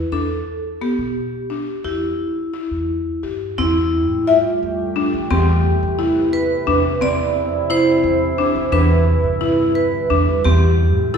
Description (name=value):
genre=contemporary instrumental, chamber music in an uneven meter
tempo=175 BPM (eighths)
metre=5/8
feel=straight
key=E phrygian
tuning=A4 = 440 Hz
part: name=vibraphone with medium hard mallets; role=second line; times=0.0-11.2 s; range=E4 to D5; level=-21 LUFS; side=right 3 dB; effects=none
part: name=upright bass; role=bass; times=0.0-11.2 s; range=E2 to E3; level=-20 LUFS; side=right 1 dB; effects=none
part: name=buzzing marimba with medium hard mallets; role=arpeggios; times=0.1-11.2 s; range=B3 to E5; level=-20 LUFS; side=left 2 dB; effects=none
part: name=deep dark ambient pad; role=sustained chords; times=4.0-11.2 s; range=C3 to B4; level=-25 LUFS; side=left 1 dB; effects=chorus, built-in reverb
room=wet scoring stage reverb, RT60 1.5 s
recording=recorded in a church or concert hall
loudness=-16 LUFS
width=side -6 dB against mid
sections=0.0-3.6 A section; 3.6-11.2 B section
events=none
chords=0.1 Gadd9/E; 1.8 Em; 3.6 Fmaj9/E; 5.3 Cmaj7; 7.0 Dm9; 8.7 Em7; 10.5 C6/E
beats=| 0.13 0.47 0.81 1.16 1.50 | 1.84 2.19 2.54 2.88 3.23 | 3.58 3.93 4.28 4.62 4.96 | 5.30 5.65 5.99 6.33 6.67 | 7.01 7.35 7.69 8.04 8.38 | 8.72 9.07 9.41 9.76 10.11 | 10.45 10.80 11.15